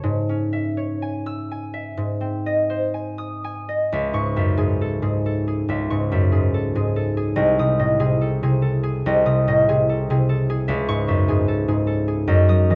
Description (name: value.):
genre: classical, solo harp piece.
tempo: 61-75 BPM.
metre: 4/4.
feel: rubato.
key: C# minor.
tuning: A4 = 440 Hz.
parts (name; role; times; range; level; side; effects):
concert harp; solo; 0.0-12.8 s; B#1 to E6; -21 LUFS; equal; none.
room: moderate stone room reverb, RT60 1.3 s.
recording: worn, warbling old tape, cassette tape, warbly pitch drift.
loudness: -21 LUFS.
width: mono.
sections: 0.0-3.9 A section; 3.9-12.8 B section.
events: none.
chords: 0.1 C#m/G#; 2.0 G#; 3.9 C#m; 7.3 G#/B#; 10.7 C#m.